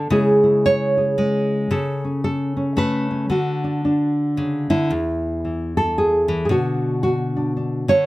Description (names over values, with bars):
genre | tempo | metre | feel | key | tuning
folk, solo fingerstyle acoustic guitar | 113 BPM | 3/4 | swing 61% on 8ths | unclear | A4 = 440 Hz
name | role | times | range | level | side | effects
nylon-string guitar | solo | 0.0-8.1 s | E2 to C#5 | -18 LUFS | equal | none
room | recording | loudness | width
light reverb | close, detailed microphones | -18 LUFS | side -18 dB against mid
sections
0.0-4.9 A section; 4.9-8.1 B section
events
none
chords
0.1 C#m; 1.7 Aadd9/C#; 3.3 D; 4.9 N.C.; 6.5 Bm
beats
| 0.12 0.65 1.18 | 1.71 2.25 2.78 | 3.31 3.84 4.38 | 4.91 5.44 5.97 | 6.50 7.04 7.57